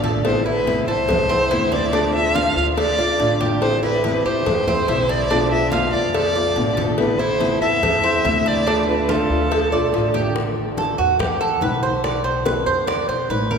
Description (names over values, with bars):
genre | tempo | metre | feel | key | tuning
latin, Cuban son and guajira | 142 BPM | 4/4 | straight | A minor | A4 = 440 Hz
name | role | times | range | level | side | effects
nylon-string guitar | accompaniment | 0.0-10.4 s | B2 to F4 | -24 LUFS | left 3 dB | none
Cuban tres | arpeggios | 0.0-13.6 s | C4 to D5 | -23 LUFS | right 3 dB | none
upright bass | bass | 0.0-13.6 s | A1 to F2 | -26 LUFS | equal | none
congas | percussion | 0.0-13.6 s | none | -29 LUFS | equal | none
cowbell and bongos | percussion | 0.0-13.6 s | none | -25 LUFS | left 1 dB | none
warm violin | melody | 0.3-10.1 s | A4 to F5 | -21 LUFS | equal | none
room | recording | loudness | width
wet cathedral reverb, RT60 5.1 s | recorded in a church or concert hall | -17 LUFS | side -6 dB against mid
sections
0.0-10.4 A section; 10.4-13.6 B section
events
Cuban tres solo 10.4-13.6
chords
0.3 Amadd9; 1.9 Dm; 3.6 Am7; 5.3 Bm7b5; 7.0 Amadd9; 8.7 Dm; 10.4 A5; 12.0 Amadd9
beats
| 0.25 0.67 1.09 1.51 | 1.93 2.35 2.77 3.20 | 3.62 4.04 4.46 4.88 | 5.30 5.72 6.14 6.57 | 6.99 7.41 7.83 8.25 | 8.67 9.09 9.51 9.94 | 10.36 10.78 11.20 11.62 | 12.04 12.46 12.88 13.31